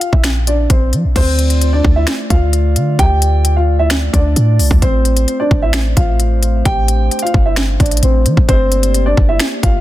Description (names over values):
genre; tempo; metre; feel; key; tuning
hip hop, trap; 131 BPM; 4/4; half-time; D minor; A4 = 440 Hz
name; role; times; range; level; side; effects
dark concert grand piano; melody; 0.0-9.8 s; C4 to G5; -18 LUFS; equal; ping-pong delay
trap drum kit; drums; 0.0-9.7 s; crash cymbal, finger snaps, hi-hat, kick drum, snare drum; -14 LUFS; equal; none
clean 808-style bass; bass; 0.1-9.8 s; G1 to F3; -14 LUFS; equal; none
glass harmonica; sustained chords; 1.2-9.8 s; A3 to D5; -24 LUFS; equal; none
room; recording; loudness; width
little or no reverb; dense, heavily limited modern master; -11 LUFS; side -15 dB against mid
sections
0.0-1.2 A section; 1.2-9.8 B section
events
none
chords
0.0 Bb; 1.2 Dm; 4.8 Am; 8.5 Gm